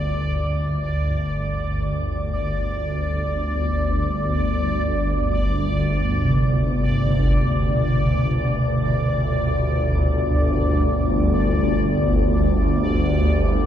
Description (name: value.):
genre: dark ambient drone.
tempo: free time.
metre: none.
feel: none.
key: G major.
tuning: A4 = 439 Hz.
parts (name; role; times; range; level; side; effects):
gamelan-type bossed gongs; arpeggios; 0.0-13.7 s; B2 to D3; -26 LUFS; right 1 dB; ping-pong delay.
swarming drone; drone; 0.0-13.7 s; G1 to D2; -20 LUFS; equal; built-in reverb.
bubbling stepped-filter texture; texture; 0.0-13.7 s; D5; -27 LUFS; equal; chorus, built-in reverb, shimmer reverb.
room: wet cathedral reverb, RT60 6.0 s.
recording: in a vast, echoing space.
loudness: -19 LUFS.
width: side -10 dB against mid.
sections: 0.0-13.7 A section.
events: none.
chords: 0.0 G5.